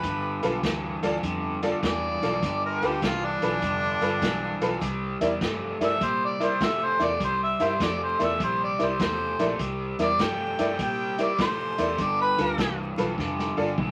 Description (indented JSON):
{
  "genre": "electric blues shuffle",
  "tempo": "100 BPM",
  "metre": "4/4",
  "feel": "swing 66% on 8ths",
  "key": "unclear",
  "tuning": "A4 = 441 Hz",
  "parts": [
    { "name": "mellow harmonica", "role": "melody", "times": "0.0-12.8 s", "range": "D4 to G5", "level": "-29 LUFS", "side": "equal", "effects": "overdrive" },
    { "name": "overdriven semi-hollow guitar", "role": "riff", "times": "0.0-13.9 s", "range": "G2 to A3", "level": "-32 LUFS", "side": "equal", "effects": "none" },
    { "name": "vintage muted fingered electric bass", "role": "bass", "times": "0.0-13.9 s", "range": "F1 to Bb2", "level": "-39 LUFS", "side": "equal", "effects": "none" },
    { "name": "vintage drum kit", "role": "drums", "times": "0.0-13.9 s", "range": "hi-hat, kick drum, snare drum, toms", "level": "-33 LUFS", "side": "equal", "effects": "none" },
    { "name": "tack piano", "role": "accompaniment", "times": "0.4-13.7 s", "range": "E4 to E5", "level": "-30 LUFS", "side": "equal", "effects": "none" }
  ],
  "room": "wet studio reverb, RT60 0.6 s",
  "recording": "vinyl crackle",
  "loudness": "-26 LUFS",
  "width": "mono",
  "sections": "0.0-13.9 A section",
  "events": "harmonica solo 0.0-13.9; drum fill 13.2-13.9",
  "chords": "0.0 G7; 4.8 C7; 12.0 G7",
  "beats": "| 0.04 0.63 1.23 1.83 | 2.43 3.02 3.62 4.22 | 4.82 5.42 6.01 6.61 | 7.21 7.80 8.40 9.00 | 9.60 10.20 10.79 11.39 | 11.99 12.59 13.19 13.78"
}